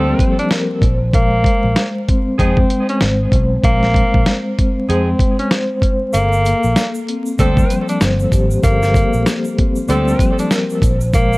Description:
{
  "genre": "hip hop, boom-bap hip-hop",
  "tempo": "96 BPM",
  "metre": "4/4",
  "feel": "swing 60% on 16ths",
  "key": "G minor",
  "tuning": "A4 = 437 Hz",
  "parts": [
    { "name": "breathy tenor saxophone", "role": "melody", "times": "0.0-11.4 s", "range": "Bb3 to D4", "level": "-20 LUFS", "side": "equal", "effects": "high-pass filter, low-pass filter, digital delay" },
    { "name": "vibraphone with soft mallets", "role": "accompaniment", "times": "0.0-11.4 s", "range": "F3 to C5", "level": "-19 LUFS", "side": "left 1 dB", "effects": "cassette tape, high-pass filter, low-pass filter" },
    { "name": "clear saxophone section", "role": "stabs", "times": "0.0-10.3 s", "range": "F3 to A4", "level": "-25 LUFS", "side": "right 2 dB", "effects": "high-pass filter, low-pass filter, digital delay" },
    { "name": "fretless electric bass", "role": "bass", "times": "0.0-11.4 s", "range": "G1 to F2", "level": "-17 LUFS", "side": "equal", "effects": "none" },
    { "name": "dusty soul sampler-style drum kit", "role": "drums", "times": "0.2-11.3 s", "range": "hi-hat, kick drum, snare drum", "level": "-16 LUFS", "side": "equal", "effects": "none" },
    { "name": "tube shaker", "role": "percussion", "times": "6.1-11.4 s", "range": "none", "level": "-36 LUFS", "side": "right 4 dB", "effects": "none" }
  ],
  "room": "little or no reverb",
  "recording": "vinyl crackle",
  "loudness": "-13 LUFS",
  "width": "side -22 dB against mid",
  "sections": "0.0-11.4 A section",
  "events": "kick muted 6.1-7.4",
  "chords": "0.0 Gm11; 0.8 Bb7sus2; 6.1 Gm11; 10.8 Bb7sus2"
}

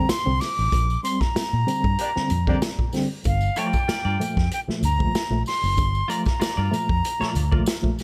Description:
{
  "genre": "funk",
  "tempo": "95 BPM",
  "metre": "4/4",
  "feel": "straight",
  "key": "G minor",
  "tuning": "A4 = 440 Hz",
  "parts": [
    { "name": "breathy bright concert flute", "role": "melody", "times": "0.0-7.9 s", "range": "F5 to D6", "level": "-29 LUFS", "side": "equal", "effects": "none" },
    { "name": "tine electric piano", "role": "stabs", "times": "0.0-8.0 s", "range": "G2 to C4", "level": "-30 LUFS", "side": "equal", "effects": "medium tremolo" },
    { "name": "vintage muted fingered electric bass", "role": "bass", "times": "0.1-7.6 s", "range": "F#1 to Bb2", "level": "-26 LUFS", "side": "equal", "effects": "none" },
    { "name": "vintage drum kit", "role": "drums", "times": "0.1-8.0 s", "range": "hi-hat, kick drum, snare drum", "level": "-28 LUFS", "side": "equal", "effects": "none" },
    { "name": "tambourine", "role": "percussion", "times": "0.1-8.0 s", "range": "none", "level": "-43 LUFS", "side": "equal", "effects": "none" },
    { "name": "warm horn section", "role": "second line", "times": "2.0-2.6 s", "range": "Bb3 to D5", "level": "-35 LUFS", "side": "equal", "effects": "none" },
    { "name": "semi-hollow electric guitar", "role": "accompaniment", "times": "3.6-7.6 s", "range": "F4 to D5", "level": "-35 LUFS", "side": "equal", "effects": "spring reverb" }
  ],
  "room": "small room ambience",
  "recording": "none",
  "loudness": "-23 LUFS",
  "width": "mono",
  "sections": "0.0-8.0 A section",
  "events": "break 0.0-3.2; band accent 0.7-3.2",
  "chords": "0.0 Bb6; 3.2 Gm7"
}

